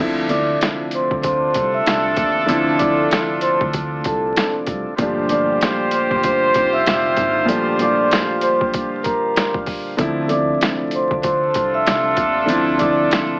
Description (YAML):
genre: hip hop, boom-bap hip-hop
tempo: 96 BPM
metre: 4/4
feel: swing 59% on 16ths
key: D minor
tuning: A4 = 441 Hz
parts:
  - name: dark upright piano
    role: accompaniment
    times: 0.0-13.4 s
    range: Bb2 to F4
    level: -22 LUFS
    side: equal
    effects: cassette tape
  - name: tonewheel organ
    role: sustained chords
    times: 0.0-13.4 s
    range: Bb2 to F4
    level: -28 LUFS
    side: equal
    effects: slow rotary speaker
  - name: upright bass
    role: bass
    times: 0.0-13.0 s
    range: F1 to Eb2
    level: -30 LUFS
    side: equal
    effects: none
  - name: vibraphone with soft mallets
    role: melody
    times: 0.3-13.1 s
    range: A4 to E6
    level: -20 LUFS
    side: equal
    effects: none
  - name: boom bap sampler-style drum kit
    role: drums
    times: 0.3-13.3 s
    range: hi-hat, kick drum, snare drum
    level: -21 LUFS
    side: equal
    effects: overdrive, vintage 12-bit sampler grit
  - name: warm horn section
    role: stabs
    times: 1.2-13.4 s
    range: D4 to C5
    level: -21 LUFS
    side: equal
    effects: digital delay
room: moderate studio reverb, RT60 0.6 s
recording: vinyl crackle, AM radio sound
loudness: -15 LUFS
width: side -26 dB against mid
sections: 0.0-13.4 A section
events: none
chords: 0.0 Dm7; 5.0 Gm7; 10.0 Dm7